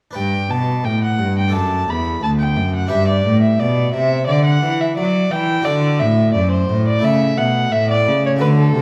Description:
classical, baroque-style sonata movement with continuo; 87 BPM; 4/4; straight; G major; A4 = 440 Hz
harpsichord; accompaniment; 0.1-8.8 s; D2 to D5; -23 LUFS; equal
dark violin; melody; 0.2-8.8 s; A4 to B5; -22 LUFS; equal
rich cello; bass; 0.2-8.8 s; D2 to F#3; -20 LUFS; equal
moderate recital hall reverb, RT60 1.5 s; dark, warm production, vinyl crackle; -17 LUFS; mono
0.2-8.8 A section
0.2 G; 1.5 D; 2.9 G; 5.7 D; 7.0 A
| 0.16 0.85 1.54 2.23 | 2.92 3.61 4.30 4.99 | 5.67 6.36 7.04 7.73 | 8.41

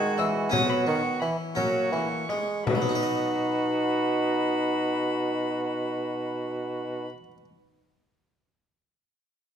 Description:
classical, renaissance-style consort dance; 54-60 BPM (dotted quarters); 6/8; straight; B major; A4 = 439 Hz
dark violin; melody; 0.0-7.1 s; B5 to G#6; -34 LUFS; left 4 dB
mellow cor anglais; second line; 0.0-7.1 s; F#4; -32 LUFS; right 6 dB
clear trombone; accompaniment; 0.0-7.1 s; G#3 to D#4; -30 LUFS; left 2 dB
harpsichord; accompaniment; 0.0-7.4 s; B2 to E5; -34 LUFS; left 2 dB
warm bassoon; bass; 0.0-7.1 s; B2 to G#3; -29 LUFS; right 2 dB
frame drum; percussion; 0.2-3.0 s; -32 LUFS; left 5 dB
moderate recital hall reverb, RT60 1.5 s; -24 LUFS; side -8 dB against mid
0.0-2.7 A section; 2.7-7.1 B section
slowing down 0.0-2.7
0.0 E; 0.5 F#sus4; 1.6 F#; 2.7 B
| 0.52 1.56 | 2.66 3.77 | 4.88 6.00

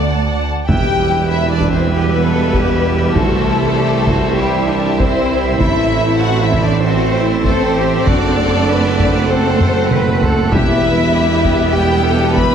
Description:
cinematic, epic orchestral film score; 98 BPM; 4/4; straight; E minor; A4 = 440 Hz
warm symphonic violin section; melody; 0.0-12.5 s; G4 to B5; -21 LUFS; left 4 dB
warm symphonic violin section; second line; 0.0-12.5 s; G3 to F#5; -22 LUFS; left 3 dB
warm symphonic viola section; accompaniment; 0.0-12.5 s; E3 to D5; -21 LUFS; right 1 dB
mellow French horn section; sustained chords; 0.0-12.5 s; G3 to B4; -23 LUFS; left 3 dB
rich symphonic cello section; bass; 0.0-12.5 s; D2 to B4; -22 LUFS; right 2 dB
rich symphonic double bass section; bass; 0.0-12.5 s; E1 to E2; -20 LUFS; right 4 dB
pipe organ, cornet; sustained chords; 0.7-12.5 s; G3 to F#5; -22 LUFS; right 1 dB
clear tuba; bass; 0.7-12.5 s; E1 to C2; -22 LUFS; right 4 dB
taiko ensemble; drums; 0.7-12.5 s; -20 LUFS; equal
timpani; percussion; 0.7-1.6, 10.5-11.4 s; E2; -22 LUFS; right 1 dB
moderate scoring stage reverb, RT60 2.2 s; heavily compressed radio sound; -12 LUFS; side -8 dB against mid
0.7-12.5 A section
drum fill 9.6-10.5
0.0 D; 0.7 Em; 3.2 C; 5.6 Am; 8.1 F#dim; 10.5 Em
0.09 | 0.70 1.31 1.93 2.54 | 3.15 3.77 4.38 5.00 | 5.61 6.23 6.84 7.45 | 8.07 8.68 9.30 9.91 | 10.52 11.14 11.75 12.37

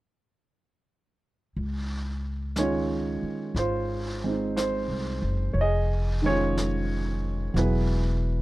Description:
jazz ballad; 60 BPM; 4/4; swing 67% on 8ths; Db major; A4 = 439 Hz
upright bass; bass; 1.6-8.4 s; E1 to Db2; -28 LUFS; equal
vintage brush drum kit; drums; 1.6-8.4 s; brushed snare drum, hi-hat, snare drum; -38 LUFS; left 1 dB
warm grand piano; accompaniment; 2.6-8.4 s; Eb3 to Eb5; -27 LUFS; right 2 dB
little or no reverb; dry, close 1970s-style studio recording; -25 LUFS; side -18 dB against mid
1.6-8.4 A section
1.6 Dbmaj9; 5.6 Dbadd9/F; 7.6 E
| 1.57 2.57 3.57 4.57 | 5.57 6.57 7.56

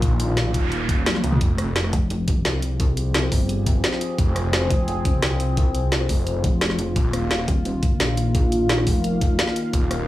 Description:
dark technical drum and bass; 173 BPM; 4/4; straight; F minor; A4 = 440 Hz
sweeping resonant pad; sustained chords; 0.0-10.1 s; Eb3 to F5; -26 LUFS; left 1 dB; chorus, phaser, sidechain pumping
snarling distorted saw bass; bass; 0.0-1.9, 4.2-7.5, 9.7-10.1 s; Eb1 to Db2; -24 LUFS; equal; distortion, tube saturation
drum and bass drum kit; drums; 0.0-10.0 s; hi-hat, rim click, snare drum, toms; -25 LUFS; equal; overdrive
electronic kick drum; drums; 0.0-9.8 s; -21 LUFS; equal; overdrive
noise sweep; sound effects; 0.3-1.4 s; -32 LUFS; right 4 dB
pulsing pluck wobble bass; bass; 1.9-9.4 s; Eb1 to C2; -23 LUFS; equal; chorus
light reverb, digital ambience; studio reverb; -19 LUFS; side -15 dB against mid
0.0-10.1 A section
noise sweep 0.3-1.4; drum fill 1.1-1.4
0.0 Ebsus2; 1.4 Fm; 7.0 Ebsus2
| 0.02 0.37 0.72 1.06 | 1.41 1.76 2.10 2.45 | 2.80 3.15 3.49 3.84 | 4.18 4.53 4.88 5.23 | 5.57 5.92 6.27 6.61 | 6.96 7.31 7.65 8.00 | 8.35 8.69 9.04 9.39 | 9.73

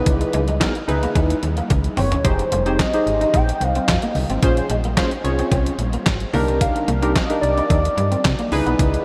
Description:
early-eighties boogie funk; 110 BPM; 4/4; straight; F minor; A4 = 440 Hz
funky polysynth comp; accompaniment; 0.0-9.0 s; Db4 to Db5; -26 LUFS; equal; chorus
clean electric guitar; riff; 0.0-9.0 s; Ab3 to Eb4; -30 LUFS; equal; ensemble chorus
slap-like FM bass; bass; 0.0-9.0 s; F1 to C3; -24 LUFS; equal
detuned 8-bit digital drum machine; drums; 0.1-9.0 s; handclaps, hi-hat, kick drum, snare drum, toms; -24 LUFS; equal
congas; percussion; 0.1-9.0 s; -34 LUFS; equal
warm velvety synth lead; melody; 2.0-8.5 s; Bb4 to G5; -27 LUFS; equal; chorus, delay
wet huge ambient reverb, RT60 8.0 s; dreamy mix soaked in reverb; -19 LUFS; mono
0.0-9.0 A section
drum fill 1.7-2.2
0.0 Dbm9; 2.2 Fm9; 4.4 Bbm9; 6.3 Cm9; 8.5 Dbm9
| 0.07 0.61 1.16 1.70 | 2.25 2.79 3.34 3.88 | 4.43 4.97 5.52 6.07 | 6.61 7.16 7.70 8.25 | 8.79

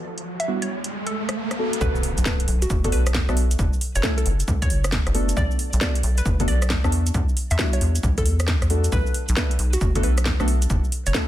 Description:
UK garage, two-step garage; 135 BPM; 4/4; swing 64% on 16ths; B minor; A4 = 440 Hz
riser and impact; sound effects; 0.0-3.6 s; -30 LUFS; right 1 dB
garage drum kit; drums; 0.2-11.3 s; hi-hat, rim click, shaker, snare drum; -27 LUFS; right 1 dB; small room ambience
hollow square pluck; melody; 0.4-11.2 s; F#4 to E5; -32 LUFS; equal; chorus, digital delay
deep mellow chord stab; stabs; 0.5-11.3 s; G3 to A4; -28 LUFS; equal; wide subtle chorus, digital delay
rubbery square bass; bass; 1.8-11.1 s; F#1 to E2; -21 LUFS; equal
electronic kick drum; drums; 1.8-11.3 s; -24 LUFS; equal; small room ambience
little or no reverb; dense, heavily limited modern master, low-pass filter; -19 LUFS; side -13 dB against mid
0.0-1.8 A section; 1.8-11.3 B section
riser 0.0-1.8; drop 1.8-11.3; impact 1.8-3.6
0.0 Em9; 1.8 Bm7; 3.6 F#m7; 5.4 Bm7; 6.9 Em9; 8.9 Bm7; 10.7 F#m7
| 0.03 0.48 0.92 1.37 | 1.81 2.26 2.70 3.15 | 3.59 4.03 4.48 4.92 | 5.37 5.81 6.26 6.70 | 7.14 7.59 8.03 8.48 | 8.92 9.37 9.81 10.26 | 10.70 11.14

